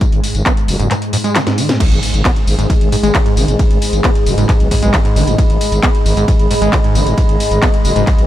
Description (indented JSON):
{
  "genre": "driving peak-time techno",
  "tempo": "134 BPM",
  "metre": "4/4",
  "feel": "straight",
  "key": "G# minor",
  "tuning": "A4 = 439 Hz",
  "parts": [
    { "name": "overdriven acid bass", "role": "riff", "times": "0.0-8.1 s", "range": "G#2 to B3", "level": "-19 LUFS", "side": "equal", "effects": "distortion, wide subtle chorus, sidechain pumping, tape echo" },
    { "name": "swarming drone", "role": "drone", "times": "0.0-8.3 s", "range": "G#2 to G#3", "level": "-22 LUFS", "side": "equal", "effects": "built-in reverb, sidechain pumping" },
    { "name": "electronic kick drum", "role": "drums", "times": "0.0-8.2 s", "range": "none", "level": "-14 LUFS", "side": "equal", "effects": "none" },
    { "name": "techno drum kit", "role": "drums", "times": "0.0-8.3 s", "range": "crash cymbal, handclaps, hi-hat, ride cymbal, snare drum, tambourine", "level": "-20 LUFS", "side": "left 1 dB", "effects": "sidechain pumping on hats, sidechain pumping on perc, sidechain pumping on cymbals" },
    { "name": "growling FM bass", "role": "bass", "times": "0.1-8.3 s", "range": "F#1 to B1", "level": "-16 LUFS", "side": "equal", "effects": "sidechain pumping" },
    { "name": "impact", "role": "sound effects", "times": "1.8-3.6 s", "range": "none", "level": "-23 LUFS", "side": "equal", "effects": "none" },
    { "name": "warbly tape-like pad", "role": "texture", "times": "2.6-8.3 s", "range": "G#4 to B5", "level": "-20 LUFS", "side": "left 1 dB", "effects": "chorus, built-in reverb, sidechain pumping" }
  ],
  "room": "light reverb, digital ambience",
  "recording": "none",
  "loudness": "-11 LUFS",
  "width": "side -13 dB against mid",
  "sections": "0.0-1.8 A section; 1.8-8.3 B section",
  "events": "kick drops out 0.9-1.8; drum fill 1.4-1.8; drop 1.8-8.3; impact 1.8-3.6",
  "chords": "0.0 N.C.; 1.8 G#m",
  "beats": "| 0.01 0.46 0.91 1.35 | 1.80 2.25 2.70 3.15 | 3.59 4.04 4.49 4.94 | 5.38 5.83 6.28 6.73 | 7.18 7.62 8.07"
}